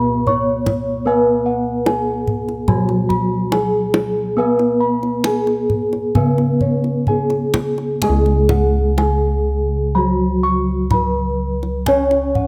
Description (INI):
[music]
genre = Javanese gamelan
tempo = 62-76 BPM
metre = 4/4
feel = straight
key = unclear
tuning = A4 = 440 Hz
[part]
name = gamelan-type bronze metallophone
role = melody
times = 0.0-12.5 s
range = F#4-20c to C#5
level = -23 LUFS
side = equal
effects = none
[part]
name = gamelan-type bronze metallophone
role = accompaniment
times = 0.0-12.5 s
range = F#3-20c to C#4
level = -24 LUFS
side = equal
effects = none
[part]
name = gamelan-type bossed gongs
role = arpeggios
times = 0.0-12.5 s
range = C#5 to C#6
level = -27 LUFS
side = equal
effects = none
[part]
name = gamelan-type bossed gongs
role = bass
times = 0.0-12.5 s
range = C#2 to C#5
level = -22 LUFS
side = equal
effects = none
[part]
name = kendang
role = percussion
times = 0.3-12.5 s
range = none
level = -24 LUFS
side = equal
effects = none
[sound]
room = light reverb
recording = close, detailed microphones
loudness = -18 LUFS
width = mono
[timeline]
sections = 0.0-8.0 A section; 8.0-12.5 B section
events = none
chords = none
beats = 0.28 | 1.07 1.87 2.69 3.53 | 4.38 5.26 6.16 7.09 | 8.04 9.00 9.96 10.93 | 11.89